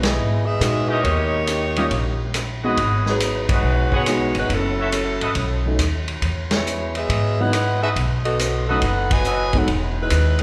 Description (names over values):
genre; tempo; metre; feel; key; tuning
jazz, big band swing; 139 BPM; 4/4; swing 66% on 8ths; E major; A4 = 440 Hz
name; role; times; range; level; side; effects
dark saxophone section; melody; 0.0-10.4 s; F#3 to G#5; -26 LUFS; equal; none
upright bass; bass; 0.0-10.4 s; E1 to A#2; -25 LUFS; equal; none
vintage drum kit; drums; 0.0-10.4 s; hi-hat, kick drum, ride cymbal, rim click, snare drum; -27 LUFS; equal; none
warm concert grand piano; accompaniment; 0.6-10.4 s; F#3 to B4; -29 LUFS; equal; none
warm trumpet section; stabs; 0.9-10.4 s; F#4 to F#5; -28 LUFS; equal; none
room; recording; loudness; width
moderate scoring stage reverb, RT60 1.7 s; recorded in a church or concert hall; -20 LUFS; mono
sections
0.0-10.4 A section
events
band accent 0.0, 3.4, 6.4, 9.0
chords
0.0 Emaj7; 1.0 D#7; 2.8 G#m7; 4.5 F#m7; 5.4 B7; 6.2 Emaj7; 8.0 B7; 9.7 Emaj7